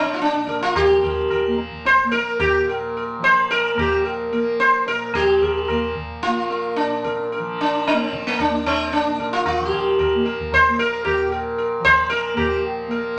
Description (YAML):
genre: indian classical, Hindustani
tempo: 111 BPM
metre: 4/4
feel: straight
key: Bb raga bhupali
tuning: A4 = 440 Hz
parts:
  - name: sitar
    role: melody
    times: 0.0-13.2 s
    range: Bb3 to C5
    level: -20 LUFS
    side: equal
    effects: none
  - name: tanpura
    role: drone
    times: 0.0-13.2 s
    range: Bb2 to Bb3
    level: -30 LUFS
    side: equal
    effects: none
  - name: tabla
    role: percussion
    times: 0.1-13.2 s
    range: none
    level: -34 LUFS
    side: equal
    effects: none
room: wet studio reverb, RT60 0.6 s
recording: none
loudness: -20 LUFS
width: mono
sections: 0.0-5.1 A section; 5.1-13.2 A section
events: speeding up 0.0-13.2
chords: none